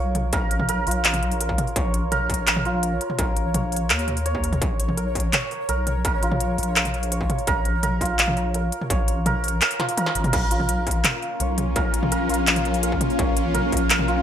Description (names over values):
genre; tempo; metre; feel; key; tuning
half-time drum and bass; 168 BPM; 4/4; half-time; Bb minor; A4 = 440 Hz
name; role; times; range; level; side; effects
santur; arpeggios; 0.0-14.2 s; F4 to Db5; -26 LUFS; right 2 dB; vintage 12-bit sampler grit, digital delay
deep soft wobble bass; bass; 0.0-14.2 s; Ab1 to Eb2; -25 LUFS; equal; chorus
pulsing gated texture; texture; 0.0-14.2 s; Db5 to F5; -34 LUFS; equal; chorus, built-in reverb
industrial drum kit; drums; 0.1-14.2 s; crash cymbal, handclaps, hi-hat, snare drum, toms; -23 LUFS; equal; none
electronic kick drum; drums; 0.3-13.8 s; none; -25 LUFS; equal; distortion
bowed-like drone; sustained chords; 11.1-14.2 s; Bb3 to F4; -26 LUFS; left 2 dB; built-in reverb, sidechain pumping
room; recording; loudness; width
moderate plate reverb, RT60 1.5 s; bright 1980s-style digital production; -20 LUFS; side -9 dB against mid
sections
0.0-14.2 A section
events
kick drops out 9.6-10.3; drum fill 9.8-10.3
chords
0.0 Bbm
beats
| 0.33 0.69 1.05 1.40 | 1.76 2.12 2.47 2.83 | 3.19 3.55 3.90 4.26 | 4.62 4.97 5.33 5.69 | 6.05 6.40 6.76 7.12 | 7.47 7.83 8.19 8.55 | 8.90 9.26 9.62 9.97 | 10.33 10.69 11.05 11.40 | 11.76 12.12 12.47 12.83 | 13.19 13.55 13.90